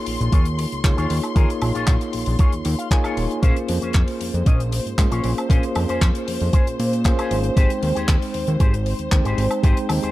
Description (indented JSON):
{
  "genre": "nu-disco, nu disco",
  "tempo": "116 BPM",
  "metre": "4/4",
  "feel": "straight",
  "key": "Bb dorian",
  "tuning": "A4 = 440 Hz",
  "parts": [
    { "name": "bright tine electric piano", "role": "accompaniment", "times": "0.0-10.1 s", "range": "Ab3 to C6", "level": "-26 LUFS", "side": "equal", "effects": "fast stereo tremolo, sidechain pumping, digital delay" },
    { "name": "dark chamber string section", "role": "sustained chords", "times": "0.0-10.1 s", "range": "C5 to C6", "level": "-30 LUFS", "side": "left 1 dB", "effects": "sidechain pumping" },
    { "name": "electric guitar with an envelope filter", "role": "riff", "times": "0.1-10.1 s", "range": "Db4 to Ab5", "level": "-31 LUFS", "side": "left 3 dB", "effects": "analog chorus, digital delay" },
    { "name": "fat analog bass", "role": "bass", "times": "0.1-10.1 s", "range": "Eb1 to Bb2", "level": "-23 LUFS", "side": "equal", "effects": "none" },
    { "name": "damped 70s drum kit", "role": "drums", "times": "0.1-10.1 s", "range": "handclaps, hi-hat, woodblock", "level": "-30 LUFS", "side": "left 1 dB", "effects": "none" },
    { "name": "electronic kick drum", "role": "drums", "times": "0.3-9.7 s", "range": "none", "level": "-17 LUFS", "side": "equal", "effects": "overdrive" }
  ],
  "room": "little or no reverb",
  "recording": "dark, warm production",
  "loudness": "-17 LUFS",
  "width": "side -16 dB against mid",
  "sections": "0.0-10.1 A section",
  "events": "clean electric guitar fill 2.4-3.4",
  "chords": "0.0 Eb9sus4; 3.4 Bbm9; 7.6 Abmaj7"
}